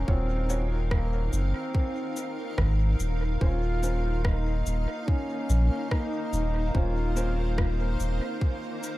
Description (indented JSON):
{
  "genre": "ambient dub",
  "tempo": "72 BPM",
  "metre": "4/4",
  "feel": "swing 55% on 16ths",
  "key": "Eb dorian",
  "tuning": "A4 = 440 Hz",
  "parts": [
    { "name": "warm trombone", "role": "melody", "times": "0.0-8.0 s", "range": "Bb3 to F4", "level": "-34 LUFS", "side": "equal", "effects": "dub echo" },
    { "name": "granular cloud pad", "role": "sustained chords", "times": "0.0-9.0 s", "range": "Eb4 to Gb5", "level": "-36 LUFS", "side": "equal", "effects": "built-in reverb" },
    { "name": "warm sub bass", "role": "bass", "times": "0.0-8.2 s", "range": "Eb1 to Bb1", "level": "-26 LUFS", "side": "equal", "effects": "none" },
    { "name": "dark upright piano", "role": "stabs", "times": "0.1-7.4 s", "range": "Db4 to Db5", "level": "-41 LUFS", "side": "right 2 dB", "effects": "dub echo" },
    { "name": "electronic kick drum", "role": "drums", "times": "0.1-8.6 s", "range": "none", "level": "-26 LUFS", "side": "equal", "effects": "none" },
    { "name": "electronic cabasa and rim click", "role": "drums", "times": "0.5-9.0 s", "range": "none", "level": "-39 LUFS", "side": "equal", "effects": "dub echo" },
    { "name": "bubbling stepped-filter texture", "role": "texture", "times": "3.7-9.0 s", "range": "Bb3", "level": "-38 LUFS", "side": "left 2 dB", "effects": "chorus, built-in reverb" }
  ],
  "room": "little or no reverb",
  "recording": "echo-heavy mix",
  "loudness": "-25 LUFS",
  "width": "side -17 dB against mid",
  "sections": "0.0-9.0 A section",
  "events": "none",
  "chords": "0.0 Ebm9; 3.4 Bbmadd9/Eb"
}